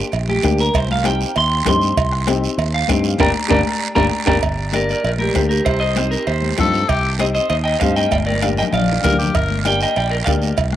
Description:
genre	latin, cumbia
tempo	195 BPM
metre	4/4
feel	straight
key	G minor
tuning	A4 = 441 Hz
part	clean electric guitar	melody	0.0-10.3 s	G4 to C6	-20 LUFS	right 2 dB	cassette tape
part	dark upright piano	accompaniment	0.0-10.5 s	Bb3 to G4	-24 LUFS	left 6 dB	cassette tape
part	fingered electric bass	bass	0.1-10.8 s	G1 to G2	-21 LUFS	equal	none
part	congas	percussion	0.1-10.8 s	none	-25 LUFS	left 6 dB	none
part	cowbell and timbales	percussion	0.1-10.7 s	none	-24 LUFS	right 8 dB	none
part	guiro	percussion	0.1-10.8 s	none	-29 LUFS	right 9 dB	none
part	bombo	percussion	0.4-10.8 s	none	-23 LUFS	left 1 dB	none
part	growling tenor saxophone	second line	6.6-9.6 s	G4 to Bb4	-22 LUFS	left 4 dB	cassette tape
room	light reverb, small room ambience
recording	home recording on cassette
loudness	-15 LUFS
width	side -12 dB against mid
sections	0.0-4.4 A section; 4.4-10.8 B section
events	clean electric guitar solo 0.0-4.4; band accent 3.2-4.4; drum fill 8.1-9.3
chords	0.0 Gm; 0.7 Cm; 3.2 Gm; 5.7 Cm; 8.1 Gm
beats	0.13 0.44 | 0.75 1.05 1.36 1.67 | 1.97 2.28 2.59 2.89 | 3.20 3.51 3.81 4.12 | 4.43 4.73 5.04 5.35 | 5.66 5.96 6.27 6.58 | 6.89 7.19 7.50 7.81 | 8.12 8.42 8.73 9.04 | 9.35 9.65 9.96 10.27 | 10.58

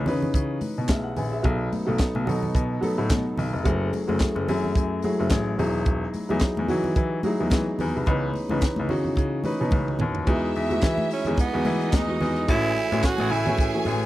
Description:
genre	disco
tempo	109 BPM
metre	4/4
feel	swing 56% on 16ths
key	unclear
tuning	A4 = 440 Hz
part	warm grand piano	accompaniment	0.0-14.1 s	E3 to G#5	-26 LUFS	equal	none
part	clear baby grand piano	bass	0.0-14.1 s	E1 to E3	-27 LUFS	left 2 dB	none
part	tight funk drum kit	drums	0.1-14.1 s	handclaps, hi-hat, kick drum, snare drum, toms	-24 LUFS	equal	none
part	congas	percussion	0.1-14.0 s	none	-31 LUFS	left 1 dB	none
part	clear symphonic string section	second line	10.3-14.1 s	D#4 to G#5	-30 LUFS	right 2 dB	none
part	growling tenor saxophone	melody	11.1-13.9 s	B3 to F#4	-27 LUFS	right 4 dB	none
room	small room ambience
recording	dry, close 1970s-style studio recording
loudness	-22 LUFS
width	side -15 dB against mid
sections	0.0-10.3 A section; 10.3-14.1 B section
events	drum fill 9.7-10.3; grand piano fill 13.9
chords	0.0 C#m9; 1.5 B7; 3.7 F#m9; 5.6 Emaj9; 8.1 C#m9; 10.3 Emaj9; 12.5 A6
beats	0.35 0.90 | 1.45 2.00 2.55 3.10 | 3.65 4.21 4.76 5.31 | 5.86 6.41 6.96 7.52 | 8.07 8.62 9.17 9.73 | 10.28 10.83 11.38 11.93 | 12.48 13.03 13.58

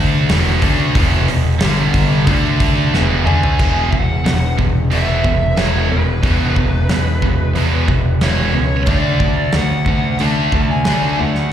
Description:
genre	hard rock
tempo	91 BPM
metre	4/4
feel	straight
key	unclear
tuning	A4 = 440 Hz
part	scooped high-gain guitar	riff	0.0-11.5 s	E2 to D4	-20 LUFS	right 10 dB	distortion
part	sludgy distorted guitar	riff	0.0-11.5 s	E2 to D4	-20 LUFS	left 8 dB	overdrive
part	fuzz picked electric bass	bass	0.0-11.5 s	E1 to E2	-18 LUFS	equal	overdrive
part	big rock drum kit	drums	0.3-11.4 s	crash cymbal, hi-hat, kick drum, snare drum, toms	-19 LUFS	equal	none
part	dark smooth lead guitar	melody	3.3-11.5 s	B4 to A5	-22 LUFS	equal	overdrive, plate reverb, slapback echo, digital delay
room	light reverb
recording	live gig heard through the venue's PA, recital hall reverb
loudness	-13 LUFS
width	side -10 dB against mid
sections	0.0-3.6 A section; 3.6-11.5 B section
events	drum fill 2.9-3.6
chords	0.3 E5; 1.6 G5; 2.3 D5; 2.9 E; 3.6 E5; 8.9 D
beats	0.30 | 0.96 1.62 2.28 2.94 | 3.60 4.26 4.92 5.58 | 6.24 6.90 7.56 8.22 | 8.88 9.54 10.20 10.86 | 11.52

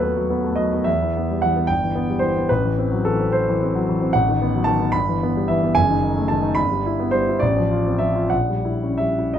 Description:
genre	classical, romantic character piece for solo piano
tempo	54-76 BPM (dotted quarters)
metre	6/8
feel	rubato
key	E minor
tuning	A4 = 440 Hz
part	clear concert grand piano	solo	0.0-9.4 s	F#1 to B5	-18 LUFS	equal	none
room	little or no reverb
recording	close, detailed microphones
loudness	-18 LUFS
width	side -9 dB against mid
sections	0.0-9.4 A section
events	none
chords	0.0 B7/D#; 0.9 Em; 1.7 Em/G; 2.5 F#m7b5/A; 4.1 B7/A; 4.9 Em/G; 5.8 D#dim/F#; 6.6 Em/G; 7.4 F/A; 8.3 A#dim7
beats	0.03 | 0.86 1.69 | 2.49 3.33 | 4.13 4.94 | 5.77 6.57 | 7.41 8.31 | 9.34

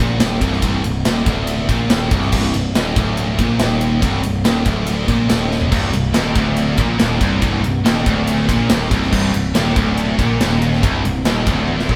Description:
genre	heavy metal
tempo	141 BPM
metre	4/4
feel	straight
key	C minor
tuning	A4 = 437 Hz
part	distorted electric guitar	riff	0.0-12.0 s	C2 to Bb2	-24 LUFS	equal	overdrive
part	heavy high-gain guitar	riff	0.0-12.0 s	C2 to Bb2	-25 LUFS	equal	distortion
part	fuzz picked electric bass	bass	0.0-12.0 s	C1 to Bb1	-23 LUFS	equal	overdrive
part	big rock drum kit	drums	0.0-12.0 s	crash cymbal, kick drum, ride cymbal, snare drum, toms	-21 LUFS	equal	none
part	scooped high-gain guitar	riff	5.7-12.0 s	C2 to Bb2	-24 LUFS	equal	distortion
room	moderate stone room reverb, RT60 1.2 s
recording	band playing live in one room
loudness	-17 LUFS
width	mono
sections	0.0-12.0 A section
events	drum fill 5.5, 11.7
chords	0.0 Cm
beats	0.20 | 0.63 1.05 1.48 1.90 | 2.32 2.75 3.17 3.60 | 4.02 4.45 4.87 5.30 | 5.72 6.15 6.57 7.00 | 7.42 7.85 8.28 8.70 | 9.13 9.55 9.98 10.41 | 10.83 11.26 11.69

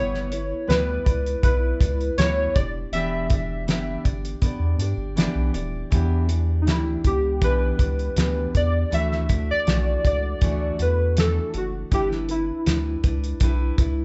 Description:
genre	indie pop, bedroom pop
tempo	80 BPM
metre	4/4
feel	straight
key	E dorian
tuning	A4 = 440 Hz
part	warbly lo-fi synth keys	melody	0.0-13.0 s	D#4 to E5	-28 LUFS	equal	chorus
part	fingerpicked steel-string acoustic guitar	accompaniment	0.0-14.0 s	D3 to D5	-32 LUFS	equal	warbly pitch drift
part	round analog bass	bass	0.0-14.0 s	D#1 to G2	-27 LUFS	equal	none
part	cloth-damped thuddy drum kit	drums	0.1-14.0 s	hi-hat, kick drum, snare drum	-26 LUFS	equal	none
room	light reverb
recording	band playing live in one room, nothing above 7.9 kHz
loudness	-23 LUFS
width	mono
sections	0.0-5.9 A section; 5.9-14.0 B section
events	synth keys solo 5.9-14.0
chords	0.0 G6; 2.6 Em7; 8.9 Dadd9; 11.9 G6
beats	0.69 1.44 2.18 | 2.93 3.68 4.43 5.18 | 5.93 6.68 7.42 8.17 | 8.92 9.67 10.42 11.17 | 11.92 12.67 13.42

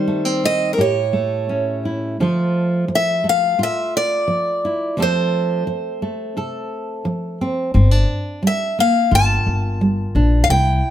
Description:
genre	acoustic folk-pop ballad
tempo	87 BPM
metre	4/4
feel	straight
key	unclear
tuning	A4 = 440 Hz
part	picked steel-string acoustic guitar	melody	0.0-10.9 s	Bb4 to A5	-19 LUFS	left 1 dB	plate reverb
part	nylon-string guitar	accompaniment	0.0-10.9 s	F2 to A4	-21 LUFS	right 1 dB	none
part	upright bass	bass	7.7-10.8 s	G1 to C2	-16 LUFS	left 1 dB	none
room	light reverb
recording	none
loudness	-16 LUFS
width	side -11 dB against mid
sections	0.0-2.2 A section; 2.2-10.9 B section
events	none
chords	0.0 Eb6; 0.8 A7; 2.2 Dmadd9; 5.0 F; 7.7 Gm7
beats	0.09 0.79 1.50 | 2.21 2.90 3.60 4.30 | 4.99 5.68 6.37 7.05 | 7.74 8.43 9.12 9.80 | 10.49

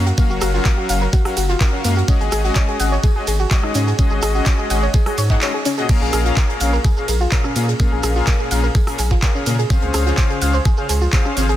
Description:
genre	progressive house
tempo	126 BPM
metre	4/4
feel	straight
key	unclear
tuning	A4 = 444 Hz
part	soft supersaw	stabs	0.0-11.5 s	Bb2 to Gb5	-23 LUFS	left 3 dB	sidechain pumping, dub echo
part	saturated sub bass	bass	0.0-11.5 s	Gb1 to Bb2	-18 LUFS	equal	sidechain pumping
part	soft round pluck	arpeggios	0.1-11.5 s	Bb3 to Gb5	-23 LUFS	equal	chorus, sidechain pumping, dub echo
part	jazz brush drum kit	drums	0.1-11.6 s	hi-hat, snare drum, tambourine	-34 LUFS	right 1 dB	none
part	shekere	percussion	0.1-11.6 s	none	-33 LUFS	right 5 dB	none
part	electronic kick drum	drums	0.2-11.2 s	none	-16 LUFS	equal	none
part	pop drum kit	drums	0.2-11.5 s	crash cymbal, handclaps, hi-hat, ride cymbal, rim click	-26 LUFS	right 1 dB	none
room	small room ambience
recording	dense, heavily limited modern master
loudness	-15 LUFS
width	side -13 dB against mid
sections	0.0-5.9 A section; 5.9-11.6 A section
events	drop 0.0-5.9, 5.9-11.6; break 5.4-5.9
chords	0.0 Gbmaj7; 2.1 Ab7sus4; 5.9 Bbm7; 9.7 Dbmaj7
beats	| 0.18 0.65 1.13 1.61 | 2.08 2.56 3.04 3.51 | 3.99 4.46 4.94 5.42 | 5.89 6.37 6.84 7.32 | 7.80 8.27 8.75 9.23 | 9.70 10.18 10.65 11.13

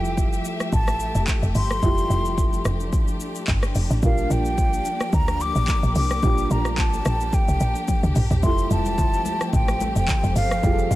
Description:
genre	amapiano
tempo	109 BPM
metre	4/4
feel	swing 55% on 16ths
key	F major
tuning	A4 = 439 Hz
part	breathy mellow silver concert flute	melody	0.0-11.0 s	F5 to D6	-27 LUFS	equal	ping-pong delay
part	dark baby grand piano	accompaniment	0.0-11.0 s	G3 to Bb4	-30 LUFS	right 2 dB	none
part	warm studio string section	sustained chords	0.0-11.0 s	F3 to E5	-30 LUFS	left 1 dB	sidechain pumping
part	tight log drum bass	bass	0.0-11.0 s	F1 to D2	-23 LUFS	equal	none
part	deep house drum kit	drums	0.1-11.0 s	handclaps, hi-hat, kick drum, rim click, shaker, toms	-23 LUFS	equal	none
part	congas	percussion	8.7-11.0 s	none	-31 LUFS	left 3 dB	none
room	little or no reverb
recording	none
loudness	-19 LUFS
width	side -16 dB against mid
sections	0.0-11.0 A section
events	break 0.0; drum fill 7.9-8.4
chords	0.0 Fmaj9; 4.0 Bb6; 8.4 Fmaj9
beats	0.17 0.72 1.27 | 1.83 2.38 2.93 3.48 | 4.03 4.58 5.13 5.68 | 6.23 6.78 7.33 7.88 | 8.43 8.98 9.53 10.08 | 10.63

